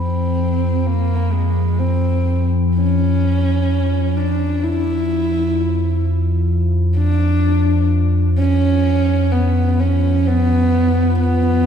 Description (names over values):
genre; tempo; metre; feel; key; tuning
dark ambient drone; free time; none; none; unclear; A4 = 440 Hz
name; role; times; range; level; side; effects
dark horsehead fiddle; melody; 0.0-11.7 s; Ab3 to E4; -20 LUFS; right 1 dB; shimmer reverb, analog delay
analog drone; drone; 0.0-11.7 s; F2 to F3; -16 LUFS; left 1 dB; chorus
quartz singing bowl; texture; 0.0-11.7 s; B5; -38 LUFS; right 2 dB; shimmer reverb
room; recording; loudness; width
moderate plate reverb, RT60 3.7 s; echo-heavy mix; -15 LUFS; side -8 dB against mid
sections
0.0-11.7 A section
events
filter sweep on synth drone 0.0-11.7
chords
0.0 F(b5, no3)